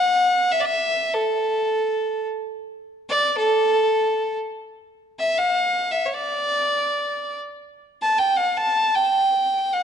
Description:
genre	Turkish makam ensemble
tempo	free time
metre	none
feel	none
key	A makam hicaz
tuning	A4 = 438 Hz
part	clear fiddle	solo	0.0-9.8 s	A4 to A5	-19 LUFS	equal	none
room	moderate scoring stage reverb, RT60 1.6 s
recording	dark, warm production, nothing above 10.8 kHz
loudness	-19 LUFS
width	side -8 dB against mid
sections	0.0-4.7 A section; 4.7-9.8 A section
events	none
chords	none

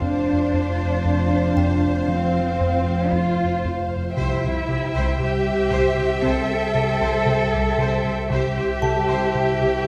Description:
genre	cinematic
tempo	58 BPM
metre	4/4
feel	straight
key	unclear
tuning	A4 = 440 Hz
part	warm chamber violin section	melody	0.0-9.9 s	F5 to G5	-37 LUFS	equal	none
part	dark chamber violin section	second line	0.0-9.9 s	C5 to E5	-32 LUFS	equal	none
part	rich studio viola section	accompaniment	0.0-9.7 s	G4 to C5	-34 LUFS	equal	none
part	dark French horn section	sustained chords	0.0-9.9 s	C5 to F5	-32 LUFS	equal	none
part	flickering grainy texture	sustained chords	0.0-9.9 s	F4 to F5	-35 LUFS	equal	none
part	round analog bass	riff	0.0-9.7 s	F2 to C4	-28 LUFS	equal	none
part	rich chamber double bass section	bass	0.0-9.7 s	F1 to C2	-31 LUFS	equal	none
part	warm chamber cello section	bass	0.0-9.9 s	C4 to A4	-26 LUFS	equal	none
part	analog drone	drone	0.0-9.9 s	C2 to F2	-30 LUFS	equal	chorus
part	music box	texture	1.6-9.9 s	A4 to A5	-32 LUFS	equal	none
room	wet recital hall reverb, RT60 1.4 s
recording	recorded in a church or concert hall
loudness	-21 LUFS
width	mono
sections	0.0-9.9 A section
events	none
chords	0.0 F5; 4.2 C

